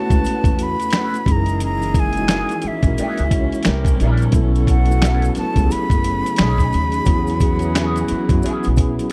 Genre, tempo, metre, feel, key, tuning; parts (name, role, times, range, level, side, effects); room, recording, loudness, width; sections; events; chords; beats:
R&B, neo-soul; 88 BPM; 4/4; swing 61% on 16ths; E major; A4 = 440 Hz
breathy silver concert flute; melody; 0.0-9.1 s; E5 to B5; -27 LUFS; equal
mellow tine electric piano; accompaniment; 0.0-9.1 s; F#3 to C#5; -25 LUFS; equal
warm studio string section; sustained chords; 0.0-9.1 s; C#3 to G#4; -32 LUFS; equal
mellow horn section; stabs; 0.0-8.7 s; G#3 to Bb4; -35 LUFS; equal
upright bass; bass; 0.1-8.9 s; F#1 to F#2; -22 LUFS; equal
dusty soul sampler-style drum kit; drums; 0.1-9.1 s; finger snaps, hi-hat, kick drum, snare drum; -21 LUFS; equal
maracas and finger snaps; percussion; 0.1-9.1 s; -41 LUFS; equal
electric guitar through a small old amp; second line; 0.9-8.7 s; E3 to B4; -31 LUFS; equal; wah
studio reverb; dry, close 1970s-style studio recording; -18 LUFS; mono
0.0-9.1 A section
0.0 A69; 1.3 F#13; 3.7 C9; 4.3 B9sus4; 6.4 B13; 7.1 E69
0.25 0.93 | 1.61 2.29 2.97 3.65 | 4.34 5.02 5.70 6.38 | 7.06 7.75 8.43 9.11